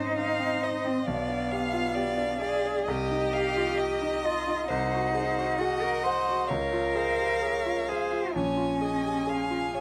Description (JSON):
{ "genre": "classical, slow romantic movement for piano quartet", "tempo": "66 BPM", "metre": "4/4", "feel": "rubato", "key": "unclear", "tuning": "A4 = 440 Hz", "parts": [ { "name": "rich violin", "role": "melody", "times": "0.0-9.8 s", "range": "C5 to F5", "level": "-36 LUFS", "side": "equal", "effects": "none" }, { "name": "rich cello", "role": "second line", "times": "0.0-9.8 s", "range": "B3 to C5", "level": "-32 LUFS", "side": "equal", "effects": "none" }, { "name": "warm violin", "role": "second line", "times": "0.0-9.8 s", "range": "C5 to Ab5", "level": "-36 LUFS", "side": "equal", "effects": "none" }, { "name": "clear concert grand piano", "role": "accompaniment", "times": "0.0-9.8 s", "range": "Bb1 to Gb5", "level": "-34 LUFS", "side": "equal", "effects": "none" } ], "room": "light reverb", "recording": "close, detailed microphones", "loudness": "-28 LUFS", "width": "mono", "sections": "0.0-9.8 A section", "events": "none", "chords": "0.0 Ab; 1.1 G7/B; 2.9 Cm; 4.7 Ab7/C; 6.5 Db; 8.3 Bbm7" }